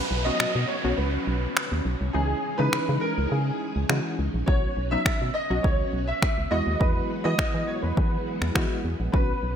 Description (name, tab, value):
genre	dance-pop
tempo	103 BPM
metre	4/4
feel	straight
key	unclear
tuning	A4 = 439 Hz
part	clear concert grand piano	melody	0.0-9.6 s	G#4 to E5	-29 LUFS	equal	ensemble chorus
part	funky polysynth comp	accompaniment	0.0-9.3 s	E3 to F#4	-32 LUFS	left 1 dB	chorus, sidechain pumping
part	string machine, full ensemble	sustained chords	0.0-9.6 s	E3 to G#4	-34 LUFS	equal	ensemble chorus, sidechain pumping
part	downlifter	sound effects	0.0-4.5 s	none	-34 LUFS	right 2 dB	none
part	organ-like FM bass	bass	0.1-9.6 s	A#1 to E3	-27 LUFS	equal	sidechain pumping
part	punchy analog drum machine	drums	0.4-9.3 s	finger snaps, kick drum	-25 LUFS	equal	gated reverb
room	light reverb, digital ambience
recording	bright 1980s-style digital production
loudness	-23 LUFS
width	side -8 dB against mid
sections	0.0-9.6 A section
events	none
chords	0.0 Bsus2; 2.1 C#madd9; 4.5 Bsus2; 6.5 Eadd9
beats	0.40 0.98 1.56 | 2.15 2.73 3.31 3.89 | 4.48 5.06 5.64 6.22 | 6.81 7.39 7.97 8.55 | 9.14